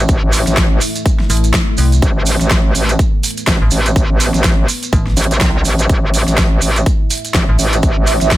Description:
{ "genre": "bass house", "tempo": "124 BPM", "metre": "4/4", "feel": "swing 59% on 16ths", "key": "unclear", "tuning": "A4 = 437 Hz", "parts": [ { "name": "deep dark ambient pad", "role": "sustained chords", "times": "0.0-8.4 s", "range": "E3 to E5", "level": "-24 LUFS", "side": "right 1 dB", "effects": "chorus, built-in reverb, sidechain pumping" }, { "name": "metallic wobble bass", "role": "bass", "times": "0.0-8.4 s", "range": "A1 to C2", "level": "-14 LUFS", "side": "equal", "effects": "chorus, overdrive, sidechain pumping" }, { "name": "big-room dance drum kit", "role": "drums", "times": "0.1-8.4 s", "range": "hi-hat, snare drum", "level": "-19 LUFS", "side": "equal", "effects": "overdrive, studio reverb" }, { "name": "electronic kick drum", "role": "drums", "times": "0.1-8.4 s", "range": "none", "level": "-14 LUFS", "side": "equal", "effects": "overdrive, studio reverb" }, { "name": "maracas", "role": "percussion", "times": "0.1-8.4 s", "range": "none", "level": "-23 LUFS", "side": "right 5 dB", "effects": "none" }, { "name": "metallic FM bass", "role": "bass", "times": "1.3-7.6 s", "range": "A1 to C2", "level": "-13 LUFS", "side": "equal", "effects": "overdrive, sidechain pumping" } ], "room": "little or no reverb", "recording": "none", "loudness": "-11 LUFS", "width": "side -15 dB against mid", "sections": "0.0-8.4 A section", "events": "none", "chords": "0.0 A5", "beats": "| 0.09 0.57 1.06 1.54 | 2.02 2.51 2.99 3.48 | 3.96 4.44 4.93 5.41 | 5.89 6.38 6.86 7.35 | 7.83 8.31" }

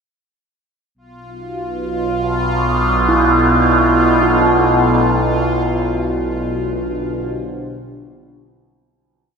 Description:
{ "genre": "dark ambient drone", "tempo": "free time", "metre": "none", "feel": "none", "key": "B locrian", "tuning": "A4 = 440 Hz", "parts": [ { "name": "overtone-sweeping drone", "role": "drone", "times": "1.5-9.1 s", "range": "B1 to B2", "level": "-16 LUFS", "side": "equal", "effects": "chorus, built-in reverb" }, { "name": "deep dark ambient pad", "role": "sustained chords", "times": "2.6-9.0 s", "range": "B2 to E5", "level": "-23 LUFS", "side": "equal", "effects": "chorus, built-in reverb" }, { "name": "bubbling stepped-filter texture", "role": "texture", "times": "1.3-9.0 s", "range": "E#4", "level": "-22 LUFS", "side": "right 1 dB", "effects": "chorus, built-in reverb" }, { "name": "bronze singing bowl", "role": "arpeggios", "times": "3.1-9.4 s", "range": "E4 to E#4", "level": "-20 LUFS", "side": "right 3 dB", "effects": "ping-pong delay" } ], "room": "wet lush hall reverb, RT60 2.9 s", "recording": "dreamy mix soaked in reverb", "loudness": "-13 LUFS", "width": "side -5 dB against mid", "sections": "1.0-9.0 A section", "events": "fade-in on ambient pad 1.0-9.0; fade-out on synth texture 1.0-9.0; fade-out 5.0-9.0", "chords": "1.0 Bm; 5.0 Dm7/B", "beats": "free time" }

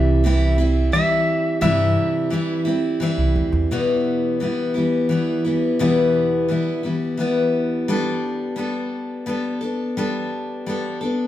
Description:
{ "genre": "acoustic folk duo or small band", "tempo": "86 BPM", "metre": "3/4", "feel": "straight", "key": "E minor", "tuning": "A4 = 439 Hz", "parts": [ { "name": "pedal steel guitar", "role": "melody", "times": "0.0-3.3 s", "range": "E5", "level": "-23 LUFS", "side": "equal", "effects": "none" }, { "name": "picked steel-string acoustic guitar", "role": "accompaniment", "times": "0.0-11.3 s", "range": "E2 to A4", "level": "-20 LUFS", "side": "left 1 dB", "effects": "none" }, { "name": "upright bass", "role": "bass", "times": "0.0-3.7 s", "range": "C2 to G2", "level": "-19 LUFS", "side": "right 1 dB", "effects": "none" } ], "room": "wet studio reverb, RT60 0.8 s", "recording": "band playing live in one room", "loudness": "-18 LUFS", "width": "side -12 dB against mid", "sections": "0.0-3.7 A section; 3.7-11.3 B section", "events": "none", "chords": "0.0 C; 3.7 Em; 7.9 Gadd9", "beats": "0.24 0.93 | 1.62 2.32 3.01 | 3.70 4.40 5.09 | 5.79 6.49 7.18 | 7.88 8.57 9.27 | 9.97 10.66" }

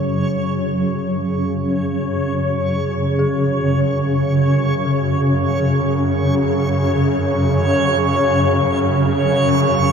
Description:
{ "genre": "dark ambient drone", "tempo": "free time", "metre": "none", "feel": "none", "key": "unclear", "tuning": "A4 = 440 Hz", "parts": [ { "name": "dark detuned synth bell", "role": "arpeggios", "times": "0.0-9.9 s", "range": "E4 to G#4", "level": "-36 LUFS", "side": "left 2 dB", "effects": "none" }, { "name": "swarming drone", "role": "drone", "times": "0.0-9.9 s", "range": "F#2 to C#3", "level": "-16 LUFS", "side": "equal", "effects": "built-in reverb" }, { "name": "backwards swelling texture", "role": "texture", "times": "0.0-9.9 s", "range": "C#5", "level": "-22 LUFS", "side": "equal", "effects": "built-in reverb" } ], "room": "wet cathedral reverb, RT60 5.8 s", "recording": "none", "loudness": "-15 LUFS", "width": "side -6 dB against mid", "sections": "0.0-9.9 A section", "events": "none", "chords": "0.0 F#5", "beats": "free time" }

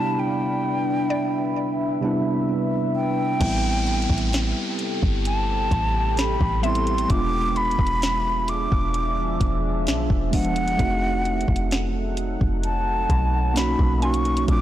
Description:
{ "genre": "contemporary R&B", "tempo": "65 BPM", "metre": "4/4", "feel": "straight", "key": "unclear", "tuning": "A4 = 439 Hz", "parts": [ { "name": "breathy hollow jazz flute", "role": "melody", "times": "0.0-14.6 s", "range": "F#5 to D6", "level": "-26 LUFS", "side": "equal", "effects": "digital delay" }, { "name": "mellow tine electric piano", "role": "accompaniment", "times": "0.0-14.6 s", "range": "C3 to Gb4", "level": "-26 LUFS", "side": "right 2 dB", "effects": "medium stereo tremolo" }, { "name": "deep dark ambient pad", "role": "sustained chords", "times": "0.0-14.6 s", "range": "C3 to B5", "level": "-29 LUFS", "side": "equal", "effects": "chorus, built-in reverb, sidechain pumping" }, { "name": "mallet-like synth pluck", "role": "texture", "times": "0.0-7.5, 14.0-14.6 s", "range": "D5 to D6", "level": "-34 LUFS", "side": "left 2 dB", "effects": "chorus, digital delay" }, { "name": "soft 808-style bass", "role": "bass", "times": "3.4-14.6 s", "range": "E1 to B1", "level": "-24 LUFS", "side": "equal", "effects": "none" }, { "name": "smooth R&B drum kit", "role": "drums", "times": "3.4-14.6 s", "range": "crash cymbal, hi-hat, kick drum, snare drum", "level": "-25 LUFS", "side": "equal", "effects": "none" }, { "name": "downlifter", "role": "sound effects", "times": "3.4-10.8 s", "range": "none", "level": "-34 LUFS", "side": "equal", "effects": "none" } ], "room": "light reverb", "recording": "blown-out, overdriven recording, overdrive", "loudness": "-20 LUFS", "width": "side -12 dB against mid", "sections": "0.0-3.4 A section; 3.4-14.6 B section", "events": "break 0.0-3.4", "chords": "0.0 Cmaj9; 3.4 Am9; 7.1 E7b9; 10.8 F7b9; 13.6 Bmaj9", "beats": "0.64 1.56 2.48 | 3.41 4.33 5.25 6.18 | 7.10 8.02 8.95 9.87 | 10.79 11.71 12.64 13.56 | 14.48" }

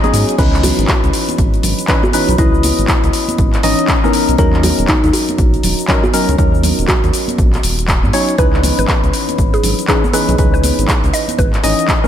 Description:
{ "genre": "deep house", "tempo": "120 BPM", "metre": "4/4", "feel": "swing 61% on 16ths", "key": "C# dorian", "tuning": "A4 = 440 Hz", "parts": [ { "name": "percussive organ stab", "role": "stabs", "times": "0.0-12.1 s", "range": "E3 to D#5", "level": "-17 LUFS", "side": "left 1 dB", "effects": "chorus, sidechain pumping, ping-pong delay" }, { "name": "deep house drum kit", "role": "drums", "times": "0.0-12.1 s", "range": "crash cymbal, handclaps, hi-hat, shaker", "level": "-19 LUFS", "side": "left 1 dB", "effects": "none" }, { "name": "congas", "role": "percussion", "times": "0.0-12.1 s", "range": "none", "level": "-24 LUFS", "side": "right 3 dB", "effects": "none" }, { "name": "round analog bass", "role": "bass", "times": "0.1-11.7 s", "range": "D#1 to G#2", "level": "-17 LUFS", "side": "equal", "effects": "sidechain pumping" }, { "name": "kalimba", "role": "melody", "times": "0.4-7.4 s", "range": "D#4 to B4", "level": "-21 LUFS", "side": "equal", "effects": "diffuse ambient delay" }, { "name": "electronic kick drum", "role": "drums", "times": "0.4-12.0 s", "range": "none", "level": "-16 LUFS", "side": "equal", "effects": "none" }, { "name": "mallet-like synth pluck", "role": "melody", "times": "8.4-11.6 s", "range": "G#4 to D#5", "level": "-21 LUFS", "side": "right 2 dB", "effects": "chorus, diffuse ambient delay" } ], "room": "light reverb", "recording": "none", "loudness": "-11 LUFS", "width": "side -10 dB against mid", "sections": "0.4-12.1 A section", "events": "drop 0.4-12.1", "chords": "0.4 C#m9; 4.4 D#m7; 8.4 C#m9", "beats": "| 0.39 0.89 1.39 1.89 | 2.38 2.88 3.38 3.88 | 4.38 4.88 5.38 5.88 | 6.38 6.88 7.38 7.88 | 8.38 8.88 9.38 9.88 | 10.38 10.88 11.38 11.88" }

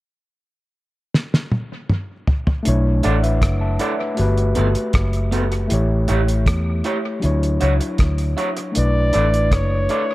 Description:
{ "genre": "lovers rock reggae", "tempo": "79 BPM", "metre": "4/4", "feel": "straight", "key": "B minor", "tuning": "A4 = 440 Hz", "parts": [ { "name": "cloth-damped thuddy drum kit", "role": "drums", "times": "1.1-10.1 s", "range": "hi-hat, kick drum, rim click, snare drum, toms", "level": "-20 LUFS", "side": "equal", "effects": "dub echo" }, { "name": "overdriven tine electric piano", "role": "accompaniment", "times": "2.6-10.1 s", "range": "F#3 to A5", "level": "-23 LUFS", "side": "left 2 dB", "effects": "dub echo" }, { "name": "vintage muted fingered electric bass", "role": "bass", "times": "2.7-9.9 s", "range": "F#1 to E2", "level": "-18 LUFS", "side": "equal", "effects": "none" }, { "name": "electric guitar through a small old amp", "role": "stabs", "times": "3.0-10.0 s", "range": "B3 to D5", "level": "-25 LUFS", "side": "right 2 dB", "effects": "none" }, { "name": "warm flugelhorn", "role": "melody", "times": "8.8-10.1 s", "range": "C#5 to D5", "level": "-20 LUFS", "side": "equal", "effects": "tape echo" } ], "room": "light reverb, studio reverb", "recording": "none", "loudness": "-17 LUFS", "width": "side -18 dB against mid", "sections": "0.0-2.7 A section; 2.7-8.8 B section; 8.8-10.1 C section", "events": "drum fill 1.1-2.7", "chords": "0.0 N.C.; 2.7 Bm11; 4.2 Gmaj9; 5.7 A7; 7.2 Dmaj9; 8.8 Bm11", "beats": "0.37 1.13 1.89 | 2.65 3.42 4.18 4.94 | 5.70 6.46 7.23 7.99 | 8.75 9.52" }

